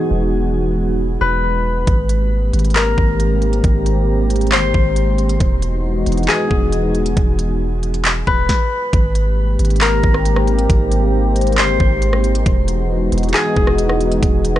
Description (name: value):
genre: hip hop, atmospheric cloud-rap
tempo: 136 BPM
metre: 4/4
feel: half-time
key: unclear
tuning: A4 = 441 Hz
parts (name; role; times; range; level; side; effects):
- Celtic harp; melody; 0.0-14.6 s; G#4 to C5; -21 LUFS; left 2 dB; ping-pong delay
- dark analog pad; sustained chords; 0.0-14.6 s; Eb3 to G4; -20 LUFS; equal; chorus, sidechain pumping
- long sustained 808-style bass; bass; 0.1-14.6 s; E1 to Ab1; -18 LUFS; equal; none
- trap drum kit; drums; 1.9-14.6 s; handclaps, hi-hat, kick drum, rim click, snare drum; -17 LUFS; equal; overdrive, vintage 12-bit sampler grit
room: little or no reverb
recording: nothing above 10.4 kHz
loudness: -14 LUFS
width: side -13 dB against mid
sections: 0.0-8.9 A section; 8.9-14.6 B section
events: none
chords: 0.0 Emaj9; 1.9 Abmaj9; 5.4 Emaj9; 8.9 Abmaj9; 12.5 Emaj9